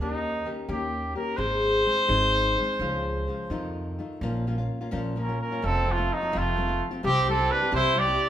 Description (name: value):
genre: mexican folk, mariachi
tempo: 86 BPM (dotted quarters)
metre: 6/8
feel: rubato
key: Bb harmonic minor from 4.2 s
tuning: A4 = 440 Hz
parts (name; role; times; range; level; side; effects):
- clear trumpet; melody; 0.0-8.3 s; Eb4 to D5; -26 LUFS; equal; none
- nylon-string guitar; accompaniment; 0.0-8.3 s; F2 to Ab4; -30 LUFS; left 2 dB; none
- upright bass; bass; 0.0-8.2 s; F1 to F2; -30 LUFS; right 1 dB; none
- clear trumpet; second line; 5.2-8.3 s; Gb3 to G4; -30 LUFS; right 5 dB; none
room: moderate recital hall reverb, RT60 1.6 s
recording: minimal, uncompressed stereo recording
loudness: -24 LUFS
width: side -10 dB against mid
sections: 0.0-4.2 A section; 4.2-8.3 B section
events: none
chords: 0.0 Eb7; 1.4 Ab; 2.8 Db; 3.5 F7; 4.2 Bbm; 5.6 F; 7.0 C